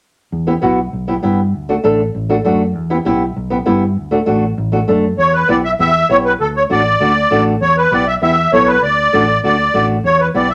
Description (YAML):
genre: latin, cumbia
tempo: 198 BPM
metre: 4/4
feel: straight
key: E dorian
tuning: A4 = 440 Hz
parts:
  - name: fingered electric bass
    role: bass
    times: 0.3-10.5 s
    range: A1 to G2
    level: -22 LUFS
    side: equal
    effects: none
  - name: flamenco guitar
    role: accompaniment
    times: 0.5-10.5 s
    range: A3 to A4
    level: -18 LUFS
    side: equal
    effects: none
  - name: musette accordion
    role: melody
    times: 5.2-10.5 s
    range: A4 to E5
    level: -15 LUFS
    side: equal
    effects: none
room: wet studio reverb, RT60 0.5 s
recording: none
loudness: -14 LUFS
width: mono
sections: 0.3-5.2 A section; 5.2-10.5 B section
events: none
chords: 0.3 Em; 1.5 D; 2.8 Em; 4.0 D; 5.2 Em; 6.4 D; 7.6 Em; 8.8 D